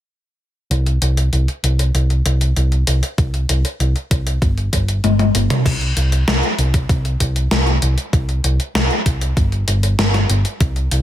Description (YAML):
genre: synthwave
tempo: 97 BPM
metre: 4/4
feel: straight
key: unclear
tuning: A4 = 439 Hz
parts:
  - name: hollow-body short-scale picked electric bass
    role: bass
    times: 0.7-11.0 s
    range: G1 to C2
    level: -16 LUFS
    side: equal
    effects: sidechain pumping, low-pass filter
  - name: gated 80s digital drum machine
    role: drums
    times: 0.7-11.0 s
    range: crash cymbal, hi-hat, snare drum, toms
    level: -20 LUFS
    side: left 1 dB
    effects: gated reverb, gated reverb snare, overdrive
  - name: electronic kick drum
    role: drums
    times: 3.2-10.7 s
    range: none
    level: -18 LUFS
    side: equal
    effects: overdrive
room: little or no reverb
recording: none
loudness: -15 LUFS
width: side -12 dB against mid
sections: 0.7-5.7 A section; 5.7-11.0 B section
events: drum fill 5.0-5.7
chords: none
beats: | 0.71 1.33 1.95 2.56 | 3.18 3.80 4.42 5.04 | 5.66 6.28 6.89 7.51 | 8.13 8.75 9.37 9.99 | 10.61